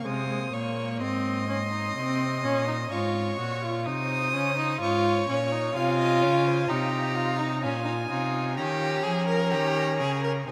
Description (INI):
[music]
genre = classical, baroque-style fugue for string quartet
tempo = 63 BPM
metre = 4/4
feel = straight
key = Db major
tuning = A4 = 440 Hz
[part]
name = warm violin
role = melody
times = 0.0-10.5 s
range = Ab5 to Eb6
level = -36 LUFS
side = equal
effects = none
[part]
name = rich viola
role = accompaniment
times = 0.0-10.5 s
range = Ab3 to Gb4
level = -30 LUFS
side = equal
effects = none
[part]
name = rich violin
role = second line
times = 0.1-10.5 s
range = Db4 to F5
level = -34 LUFS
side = equal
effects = none
[part]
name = rich cello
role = bass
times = 0.1-10.5 s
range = Ab2 to F3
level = -32 LUFS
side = equal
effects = none
[sound]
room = wet cathedral reverb, RT60 5.4 s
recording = in a vast, echoing space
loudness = -27 LUFS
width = mono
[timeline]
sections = 0.0-10.5 A section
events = none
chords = 0.0 Db5; 1.0 Ab; 2.9 Db/Ab; 6.7 Ab/C; 8.6 Eb7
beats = 0.06 1.01 1.96 | 2.92 3.86 4.81 5.76 | 6.70 7.64 8.58 9.53 | 10.48